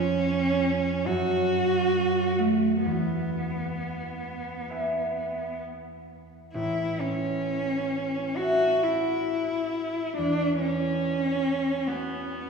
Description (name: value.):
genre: classical, romantic duo for cello and harp.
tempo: 63-71 BPM.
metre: 4/4.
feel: rubato.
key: A major.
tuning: A4 = 440 Hz.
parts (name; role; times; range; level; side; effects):
rich cello; melody; 0.0-12.5 s; A3 to F#4; -26 LUFS; equal; none.
concert harp; accompaniment; 0.0-12.5 s; A1 to A5; -29 LUFS; right 2 dB; none.
room: wet church reverb, RT60 3.2 s.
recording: recorded in a church or concert hall, studio reverb.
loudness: -24 LUFS.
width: side -5 dB against mid.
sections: 0.0-12.5 A section.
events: none.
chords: 0.0 C#7/E#; 1.1 F#m; 2.9 E; 6.5 A; 10.2 E9.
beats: 0.13 1.06 1.95 | 2.86 3.78 4.69 5.62 | 6.55 7.47 8.38 9.29 | 10.18 11.04 11.89.